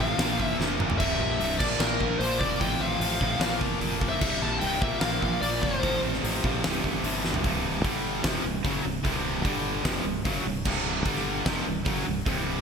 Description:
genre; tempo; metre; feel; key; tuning
hard rock; 149 BPM; 4/4; straight; unclear; A4 = 440 Hz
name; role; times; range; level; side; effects
smooth overdriven lead guitar; melody; 0.0-6.0 s; Bb4 to A5; -30 LUFS; left 3 dB; ping-pong delay
biting overdriven guitar; riff; 0.0-12.6 s; C2 to Bb3; -34 LUFS; right 1 dB; none
heavy high-gain guitar; riff; 0.0-12.6 s; C2 to Bb3; -32 LUFS; right 11 dB; distortion
overdriven electric guitar; riff; 0.0-12.6 s; C2 to Bb3; -32 LUFS; left 10 dB; none
growling fingered electric bass; bass; 0.0-12.6 s; C1 to Bb1; -33 LUFS; equal; overdrive
huge arena drum kit; drums; 0.2-12.4 s; crash cymbal, hi-hat, kick drum, snare drum, toms; -29 LUFS; equal; none
room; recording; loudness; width
moderate lush hall reverb, RT60 1.7 s, small room ambience; bright 1980s-style digital production; -24 LUFS; side -6 dB against mid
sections
0.0-7.4 A section; 7.4-12.6 B section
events
drum fill 0.6-1.0, 7.2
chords
0.2 Bb5; 1.0 C; 1.6 Bb5; 2.6 F/A; 3.4 Bb5; 4.2 C5; 4.8 Bb5; 5.8 F/A; 6.6 C5; 7.8 G5; 8.2 C5; 9.4 G5; 9.8 C5; 11.1 G5; 11.5 C5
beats
0.19 0.59 | 0.99 1.40 1.80 2.20 | 2.60 3.01 3.41 3.81 | 4.21 4.62 5.02 5.42 | 5.82 6.23 6.63 7.03 | 7.43 7.83 8.24 8.64 | 9.04 9.44 9.85 10.25 | 10.65 11.05 11.45 11.85 | 12.26

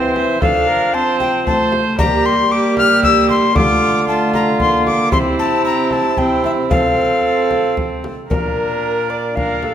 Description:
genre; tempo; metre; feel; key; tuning
classical, renaissance-style consort dance; 114 BPM; 3/4; straight; unclear; A4 = 439 Hz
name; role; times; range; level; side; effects
alto recorder; melody; 0.0-9.7 s; Bb4 to F6; -17 LUFS; left 4 dB; none
rich viola; second line; 0.0-9.7 s; E4 to C5; -20 LUFS; right 5 dB; none
warm viola; accompaniment; 0.0-9.7 s; A3 to D4; -22 LUFS; left 1 dB; none
mellow bassoon; bass; 0.0-9.7 s; Bb2 to G3; -20 LUFS; right 2 dB; none
frame drum; percussion; 0.2-9.7 s; none; -22 LUFS; left 1 dB; none
room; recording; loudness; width
wet recital hall reverb, RT60 1.5 s; none; -13 LUFS; side -9 dB against mid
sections
0.0-8.3 A section; 8.3-9.7 B section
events
none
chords
0.4 F; 2.0 Gm; 3.6 Dm; 5.1 C; 6.7 F; 8.3 Bb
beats
| 0.42 0.94 1.46 | 1.99 2.51 3.03 | 3.56 4.08 4.60 | 5.13 5.65 6.18 | 6.71 7.25 7.78 | 8.32 8.84 9.37

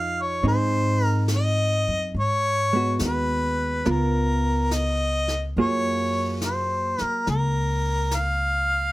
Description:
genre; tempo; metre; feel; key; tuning
jazz ballad; 70 BPM; 4/4; swing 69% on 8ths; unclear; A4 = 440 Hz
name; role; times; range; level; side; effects
mellow harmonica; melody; 0.0-8.9 s; Bb4 to F5; -24 LUFS; left 1 dB; none
hollow-body jazz guitar; accompaniment; 0.0-8.9 s; F3 to Bb4; -28 LUFS; right 2 dB; none
upright bass; bass; 0.0-8.9 s; Db2 to Ab2; -25 LUFS; equal; none
jazz brush drum kit; drums; 0.4-8.9 s; brushed snare drum, hi-hat, snare drum; -35 LUFS; left 1 dB; none
room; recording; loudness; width
light reverb; none; -21 LUFS; side -17 dB against mid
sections
0.0-8.9 A section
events
none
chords
0.0 Fm7; 2.1 Abm7; 3.9 Db13; 5.6 Gbmaj9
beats
0.44 1.29 | 2.15 3.00 3.86 4.71 | 5.57 6.42 7.27 8.12

